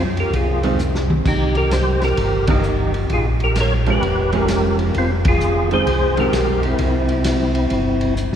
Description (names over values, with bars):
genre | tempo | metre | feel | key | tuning
soul jazz organ trio | 130 BPM | 4/4 | swing 66% on 8ths | F minor | A4 = 435 Hz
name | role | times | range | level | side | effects
percussive tonewheel organ | melody | 0.0-8.1 s | C4 to Db5 | -20 LUFS | equal | slow rotary speaker, chorus vibrato
mellow tonewheel organ | bass | 0.0-8.4 s | F1 to Gb2 | -20 LUFS | equal | slow rotary speaker
vintage drum kit | drums | 0.2-8.4 s | crash cymbal, hi-hat, kick drum, ride cymbal, snare drum, toms | -23 LUFS | equal | none
vintage hollow-body jazz guitar | accompaniment | 0.6-6.3 s | Eb3 to D#4 | -25 LUFS | right 2 dB | none
room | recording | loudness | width
wet cathedral reverb, RT60 5.0 s | recorded in a church or concert hall | -16 LUFS | side -9 dB against mid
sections
0.0-8.4 A section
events
drum fill 0.8-1.3, 8.2; band accent 2.4, 5.2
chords
0.0 Fm; 1.3 Cm7; 3.1 Bbm7; 4.9 Fm7; 6.8 C